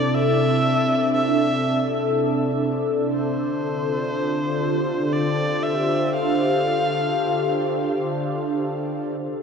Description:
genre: ambient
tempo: 59 BPM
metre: 3/4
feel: straight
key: unclear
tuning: A4 = 440 Hz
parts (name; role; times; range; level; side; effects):
- rich electric violin; melody; 0.0-8.2 s; C5 to F5; -25 LUFS; equal; tape echo
- airy breathy pad; sustained chords; 0.0-9.4 s; C3 to C5; -21 LUFS; equal; chorus, phaser
room: wet huge ambient reverb, RT60 8.6 s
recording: dark, warm production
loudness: -20 LUFS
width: side -6 dB against mid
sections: 0.0-9.2 A section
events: filter sweep on analog synth pad 0.0-9.2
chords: 0.0 C6; 3.1 G9sus4/D

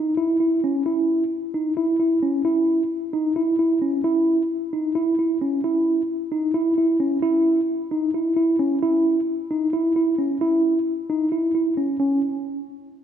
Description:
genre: progressive instrumental, progressive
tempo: 264 BPM (eighths)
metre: 7/8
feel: straight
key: C# minor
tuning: A4 = 440 Hz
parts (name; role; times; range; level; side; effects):
- mellow tine electric piano; solo; 0.0-12.2 s; C#4 to E4; -19 LUFS; equal; medium stereo tremolo
room: wet concert hall reverb, RT60 2.0 s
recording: recorded in a church or concert hall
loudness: -19 LUFS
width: side -9 dB against mid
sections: 0.0-12.0 A section; 12.0-13.0 B section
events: none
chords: none

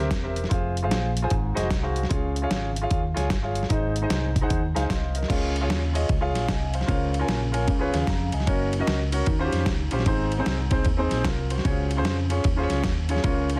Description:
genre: uptempo gospel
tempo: 151 BPM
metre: 4/4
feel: swing 65% on 8ths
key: Db major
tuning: A4 = 443 Hz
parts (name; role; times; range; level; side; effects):
- warm baby grand piano; accompaniment; 0.0-13.6 s; Ab2 to Bb5; -29 LUFS; equal; none
- fingered electric bass; bass; 0.0-13.6 s; E1 to F2; -29 LUFS; equal; none
- dusty soul sampler-style drum kit; drums; 0.1-13.6 s; crash cymbal, hi-hat, kick drum, ride cymbal, snare drum; -29 LUFS; equal; overdrive
room: light reverb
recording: dense, heavily limited modern master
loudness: -25 LUFS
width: mono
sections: 0.0-5.3 A section; 5.3-13.6 B section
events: grand piano fill 4.5-5.3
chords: 0.0 C7; 0.5 Fm; 1.3 Ab7; 2.1 Db; 3.7 Ab; 5.3 Db; 6.9 Bbm/Db; 7.7 Db7; 8.5 Gb; 9.3 Eb13; 10.1 Ab; 11.7 Db

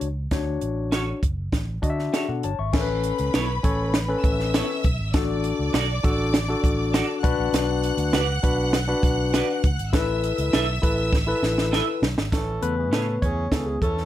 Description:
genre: uptempo 1960s-style soul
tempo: 100 BPM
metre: 4/4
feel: straight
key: A major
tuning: A4 = 440 Hz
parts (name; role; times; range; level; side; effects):
- barky tine electric piano; accompaniment; 0.0-14.1 s; C#3 to C#6; -26 LUFS; moving between left 7 dB and left 1 dB; overdrive, auto-pan
- fingered electric bass; bass; 0.0-14.1 s; F#1 to D3; -27 LUFS; right 1 dB; none
- compact cocktail drum kit; drums; 0.0-14.1 s; crash cymbal, hi-hat, kick drum, snare drum; -24 LUFS; right 1 dB; none
- clean electric guitar; stabs; 0.9-13.0 s; B3 to E5; -27 LUFS; right 4 dB; lush chorus, slapback echo
- clear studio string section; second line; 2.7-12.3 s; B4 to F#6; -31 LUFS; equal; none
- mellow horn section; second line; 12.3-14.1 s; E3 to A4; -30 LUFS; right 2 dB; none
room: light reverb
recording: none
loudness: -21 LUFS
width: side -12 dB against mid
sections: 0.0-2.7 A section; 2.7-12.3 B section; 12.3-14.1 C section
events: drum fill 11.1-12.3; tine electric piano solo 12.3-14.1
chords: 0.0 Dmaj7; 2.7 Aadd9; 5.1 D/A; 7.2 Bm; 9.9 Amaj7

